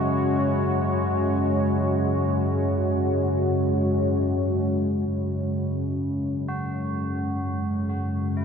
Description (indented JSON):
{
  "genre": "dark ambient drone",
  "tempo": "free time",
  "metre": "none",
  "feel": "none",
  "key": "unclear",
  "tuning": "A4 = 442 Hz",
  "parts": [
    { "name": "deep dark ambient pad", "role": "sustained chords", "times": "0.0-8.4 s", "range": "G#3 to C#5", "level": "-25 LUFS", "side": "equal", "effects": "chorus, built-in reverb" },
    { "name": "tubular bells", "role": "arpeggios", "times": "0.0-8.4 s", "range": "E4 to G#4", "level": "-39 LUFS", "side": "right 1 dB", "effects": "tape echo" },
    { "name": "analog drone", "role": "drone", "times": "0.0-8.4 s", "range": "F#2 to C#3", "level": "-25 LUFS", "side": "equal", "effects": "chorus" },
    { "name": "bronze singing bowl", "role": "texture", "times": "5.1-8.4 s", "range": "F#4", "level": "-53 LUFS", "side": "right 2 dB", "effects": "none" }
  ],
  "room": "wet huge ambient reverb, RT60 9.0 s",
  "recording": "dreamy mix soaked in reverb, cassette tape",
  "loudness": "-22 LUFS",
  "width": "side -6 dB against mid",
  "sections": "0.0-5.1 A section; 5.1-8.4 B section",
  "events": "none",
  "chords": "0.0 F#sus2",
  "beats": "free time"
}